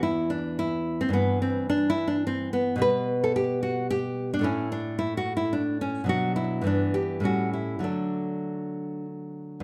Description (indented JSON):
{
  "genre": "classical, baroque-style dance for nylon-string guitar",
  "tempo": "95-114 BPM",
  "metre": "3/4",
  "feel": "rubato",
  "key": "D major",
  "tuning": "A4 = 442 Hz",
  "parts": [
    { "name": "nylon-string guitar", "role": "solo", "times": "0.0-9.6 s", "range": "E2 to B4", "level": "-27 LUFS", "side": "equal", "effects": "slapback echo" }
  ],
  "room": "light reverb",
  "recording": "close, detailed microphones",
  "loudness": "-27 LUFS",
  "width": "mono",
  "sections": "0.0-9.6 A section",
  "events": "none",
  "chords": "0.0 E5; 1.1 Em/G; 2.8 G/B; 4.5 A5; 6.1 Bm; 6.7 Em7/G; 7.2 A7; 7.8 D"
}